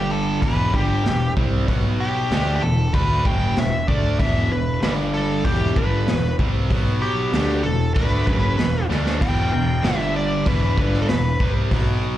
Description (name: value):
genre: classic rock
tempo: 96 BPM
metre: 4/4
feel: straight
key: E minor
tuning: A4 = 440 Hz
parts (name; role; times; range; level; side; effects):
- nasal lead guitar with a parked wah; melody; 0.0-11.5 s; G4 to G5; -26 LUFS; equal; overdrive, tape echo
- sludgy distorted guitar; riff; 0.0-12.2 s; E2 to D4; -23 LUFS; equal; overdrive
- fuzz picked electric bass; bass; 0.0-12.2 s; E1 to D2; -24 LUFS; equal; overdrive
- raw garage drum kit; drums; 0.4-11.9 s; crash cymbal, hi-hat, kick drum, snare drum; -22 LUFS; equal; none
room: small room ambience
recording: live gig heard through the venue's PA, club reverb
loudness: -18 LUFS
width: side -13 dB against mid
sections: 0.0-12.2 A section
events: drum fill 8.9-9.2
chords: 0.4 Em; 1.7 B5; 2.3 E5; 4.8 G5; 5.5 Em; 6.7 B5; 7.3 E5; 9.8 G5; 10.5 Em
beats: 0.43 1.05 | 1.68 2.31 2.94 3.57 | 4.19 4.82 5.45 6.08 | 6.70 7.33 7.96 8.59 | 9.21 9.84 10.46 11.09 | 11.71